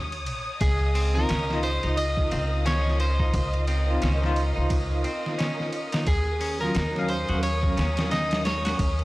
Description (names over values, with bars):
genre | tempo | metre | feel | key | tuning
trip hop | 88 BPM | 4/4 | swing 58% on 16ths | unclear | A4 = 439 Hz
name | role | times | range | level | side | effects
rich symphonic violin section | sustained chords | 0.0-9.0 s | Db4 to Eb6 | -34 LUFS | left 1 dB | none
upright bass | bass | 0.0-9.0 s | Bb1 to Eb2 | -26 LUFS | equal | tube saturation
trip hop sampler-style drum kit | drums | 0.1-9.0 s | hi-hat, kick drum, ride cymbal, snare drum | -29 LUFS | equal | overdrive
electric guitar at the edge of break-up | melody | 0.6-9.0 s | Ab4 to Eb5 | -30 LUFS | equal | tape echo
flickering grainy texture | texture | 2.1-9.0 s | Bb4 | -43 LUFS | right 3 dB | none
clean electric guitar | arpeggios | 0.9-8.8 s | C4 to Gb4 | -36 LUFS | right 1 dB | tape echo
bell-like tine electric piano | accompaniment | 1.1-9.0 s | Gb3 to F5 | -31 LUFS | equal | medium stereo tremolo
room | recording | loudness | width
little or no reverb | dry, gritty hardware recording, vinyl crackle | -22 LUFS | side -19 dB against mid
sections
0.0-9.0 A section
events
none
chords
0.0 Eb7(no3); 0.6 Dbmaj9; 6.1 Ebm7